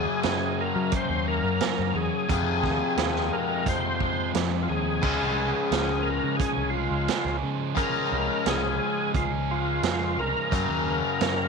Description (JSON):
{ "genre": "classic rock", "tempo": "87 BPM", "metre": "4/4", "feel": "straight", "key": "unclear", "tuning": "A4 = 440 Hz", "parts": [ { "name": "overdriven tonewheel organ", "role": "melody", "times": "0.0-11.5 s", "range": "F4 to C5", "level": "-29 LUFS", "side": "equal", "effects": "chorus vibrato, slow rotary speaker, slapback echo" }, { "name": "distorted electric guitar", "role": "riff", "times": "0.0-11.5 s", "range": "F2 to Db4", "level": "-32 LUFS", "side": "right 15 dB", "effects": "distortion" }, { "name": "overdriven semi-hollow guitar", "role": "riff", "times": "0.0-11.5 s", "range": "F2 to Db4", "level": "-29 LUFS", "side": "left 15 dB", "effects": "none" }, { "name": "picked electric bass", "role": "bass", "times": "0.0-11.5 s", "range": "C2 to Gb3", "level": "-30 LUFS", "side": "equal", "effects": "none" }, { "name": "vintage drum kit", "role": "drums", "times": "0.2-11.4 s", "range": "crash cymbal, hi-hat, kick drum, snare drum", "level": "-30 LUFS", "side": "right 6 dB", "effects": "none" } ], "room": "light reverb, small room ambience", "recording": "1960s-style stereo with parts hard left and right", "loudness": "-23 LUFS", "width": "side -4 dB against mid", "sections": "0.0-11.5 A section", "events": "none", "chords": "0.0 Gb; 2.3 Fm; 5.0 Db; 10.5 Gb" }